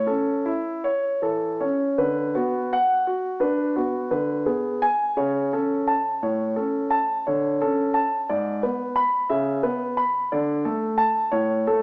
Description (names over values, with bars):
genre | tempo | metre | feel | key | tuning
classical, baroque-style suite movement for grand piano | 58 BPM (dotted quarters) | 6/8 | uneven beats, rubato | A major | A4 = 441 Hz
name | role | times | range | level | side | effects
warm concert grand piano | solo | 0.0-11.8 s | G#2 to B5 | -24 LUFS | equal | none
room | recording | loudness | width
moderate recital hall reverb, RT60 1.5 s | small speaker sound | -24 LUFS | mono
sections
0.0-2.0 A section; 2.0-11.8 A section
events
none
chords
0.0 A; 2.0 Bm/D; 4.1 G#dim/D; 5.2 A/C#; 6.2 A; 7.2 D5; 8.3 G#dim; 9.3 C#m7; 10.3 D5; 11.3 A